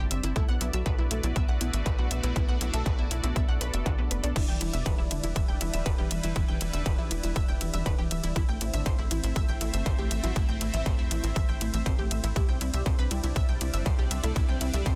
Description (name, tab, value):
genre	melodic techno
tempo	120 BPM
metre	4/4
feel	straight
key	E minor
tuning	A4 = 440 Hz
part	mellow synth brass	melody	0.0-14.9 s	B2 to B4	-39 LUFS	equal	chorus, cassette tape, sidechain pumping, delay
part	sweeping resonant pad	sustained chords	0.0-15.0 s	G3 to E5	-41 LUFS	equal	chorus, vintage 12-bit sampler grit, sidechain pumping
part	unison pluck	arpeggios	0.0-15.0 s	B3 to G6	-40 LUFS	equal	sidechain pumping, dub echo
part	tight sequencer bass	bass	0.0-15.0 s	D1 to E2	-33 LUFS	equal	sidechain pumping
part	techno drum kit	drums	0.1-15.0 s	crash cymbal, hi-hat, ride cymbal	-39 LUFS	equal	overdrive
part	electronic kick drum	drums	0.4-15.0 s	none	-30 LUFS	equal	distortion, overdrive
room	digital ambience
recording	dense, heavily limited modern master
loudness	-28 LUFS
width	mono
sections	0.0-15.0 A section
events	none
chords	0.4 Bm7; 4.4 Em7; 8.4 Am; 12.4 Cadd9